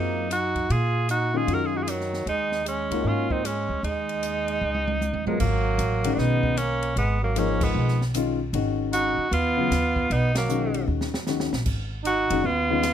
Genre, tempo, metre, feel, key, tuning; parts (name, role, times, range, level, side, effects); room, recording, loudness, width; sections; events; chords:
modal jazz; 153 BPM; 4/4; swing 64% on 8ths; G# dorian from 5.4 s; A4 = 439 Hz
bright tenor saxophone; melody; 0.0-12.9 s; Gb3 to Bb4; -26 LUFS; equal
brilliant trombone; second line; 0.0-12.9 s; Eb3 to Gb4; -30 LUFS; right 7 dB
warm grand piano; accompaniment; 0.0-12.8 s; C#3 to Bb4; -27 LUFS; left 7 dB
upright bass; bass; 0.0-12.9 s; F#1 to Bb2; -27 LUFS; equal
open jazz drum kit; drums; 0.3-12.9 s; crash cymbal, hi-hat, kick drum, ride cymbal, rim click, snare drum, toms; -33 LUFS; equal
light reverb; close, detailed microphones; -22 LUFS; side -9 dB against mid
0.0-5.4 A section; 5.4-12.9 B section
drum fill 4.6-5.4, 10.9-11.7; band accent 7.6, 10.3
0.0 Ebm9; 2.3 Dbadd9; 5.4 G#m9